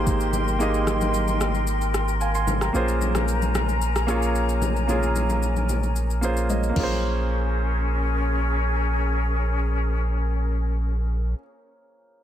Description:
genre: amapiano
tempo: 112 BPM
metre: 4/4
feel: straight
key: Bb dorian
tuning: A4 = 439 Hz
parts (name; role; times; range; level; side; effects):
- warm concert grand piano; accompaniment; 0.0-12.2 s; Bb3 to C6; -27 LUFS; right 2 dB; none
- bright large flute ensemble; sustained chords; 0.0-11.3 s; Db4 to C6; -28 LUFS; left 3 dB; sidechain pumping
- punchy sub bass; bass; 0.0-11.3 s; Ab1 to Bb1; -24 LUFS; equal; none
- smooth R&B drum kit; drums; 0.1-6.9 s; crash cymbal, kick drum, rim click, shaker, toms; -30 LUFS; left 1 dB; none
- congas; percussion; 0.3-7.3 s; none; -31 LUFS; left 2 dB; none
room: digital ambience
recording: none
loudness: -21 LUFS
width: side -11 dB against mid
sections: 0.0-7.0 A section; 7.0-11.3 B section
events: drum fill 6.5-7.0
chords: 0.0 Abmaj9; 2.7 Bbm7

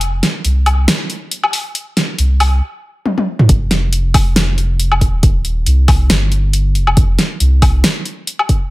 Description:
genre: deep dubstep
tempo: 138 BPM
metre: 4/4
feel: swing 56% on 16ths, half-time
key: unclear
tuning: A4 = 440 Hz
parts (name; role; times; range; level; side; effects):
- soft dub sub bass; bass; 0.0-7.8 s; Eb1 to C2; -13 LUFS; equal; tube saturation
- deep house drum kit; drums; 0.0-8.6 s; hi-hat, snare drum, toms, woodblock; -16 LUFS; equal; none
- electronic kick drum; drums; 3.5-8.6 s; none; -12 LUFS; equal; none
room: little or no reverb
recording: none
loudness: -12 LUFS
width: side -19 dB against mid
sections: 0.0-3.5 A section; 3.5-8.7 B section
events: build-up 0.0-3.5; drum fill 3.1-3.5; drop 3.5-8.7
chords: none

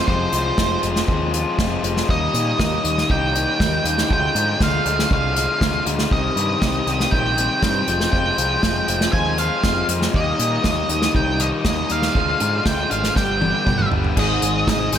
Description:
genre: indie rock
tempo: 119 BPM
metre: 4/4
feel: straight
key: unclear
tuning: A4 = 440 Hz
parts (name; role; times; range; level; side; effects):
- octave-fuzz lead guitar; melody; 0.0-15.0 s; C5 to Ab5; -22 LUFS; right 2 dB; distortion, slapback echo, digital delay
- fuzz guitar; riff; 0.0-15.0 s; G2 to Ab4; -23 LUFS; left 4 dB; distortion, slapback echo
- growling picked electric bass; bass; 0.1-15.0 s; F1 to Bb2; -25 LUFS; equal; overdrive
- unplugged drum kit; drums; 0.1-15.0 s; crash cymbal, hi-hat, kick drum, snare drum, toms; -22 LUFS; right 1 dB; none
- raw garage guitar; riff; 14.2-15.0 s; Ab2 to Ab3; -27 LUFS; right 11 dB; overdrive, lush chorus
room: moderate concert hall reverb, RT60 2.2 s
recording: big arena sound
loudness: -17 LUFS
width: side -9 dB against mid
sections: 0.0-14.2 A section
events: drum fill 13.2-14.2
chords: 0.0 Fm; 2.1 Eb; 4.1 Ddim; 6.1 Cm; 7.9 Fmadd9; 10.1 Eb; 12.2 Ddim; 13.2 G; 14.2 Ab5

